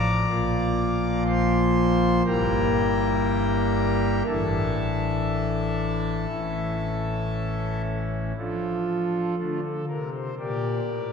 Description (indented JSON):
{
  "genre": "classical, chorale-style piece for pipe organ",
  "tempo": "60 BPM",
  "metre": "4/4",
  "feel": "straight",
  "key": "D minor",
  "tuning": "A4 = 440 Hz",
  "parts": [
    { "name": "pipe organ, foundations", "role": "solo", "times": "0.0-11.1 s", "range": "G1 to D6", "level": "-22 LUFS", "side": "left 1 dB", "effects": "none" }
  ],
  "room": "wet church reverb, RT60 2.9 s",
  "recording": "heard from further back in the room",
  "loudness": "-22 LUFS",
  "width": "side -6 dB against mid",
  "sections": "0.0-8.4 A section; 8.4-11.1 B section",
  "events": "none",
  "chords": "0.3 Bb; 2.3 Edim/G; 4.3 Asus4; 6.3 A; 8.4 Dm/F; 10.4 Gm"
}